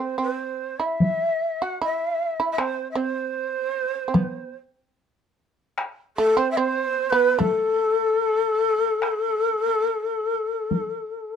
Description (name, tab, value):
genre	japanese traditional, Japanese chamber music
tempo	64-79 BPM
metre	4/4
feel	rubato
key	A kumoi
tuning	A4 = 440 Hz
part	breathy long shakuhachi	melody	0.0-11.4 s	A4 to F#5	-22 LUFS	left 1 dB	none
part	shamisen	second line	0.0-11.4 s	A3 to F#4	-26 LUFS	right 5 dB	none
part	taiko ensemble	percussion	1.0-10.9 s	none	-22 LUFS	left 1 dB	none
room	moderate studio reverb, RT60 0.6 s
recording	dark, warm production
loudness	-21 LUFS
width	side -7 dB against mid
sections	0.0-11.4 A section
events	none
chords	none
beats	0.18 1.01 1.80 | 2.58 3.35 4.15 4.97 | 5.78 6.58 7.40 8.21 | 9.02 9.82 10.70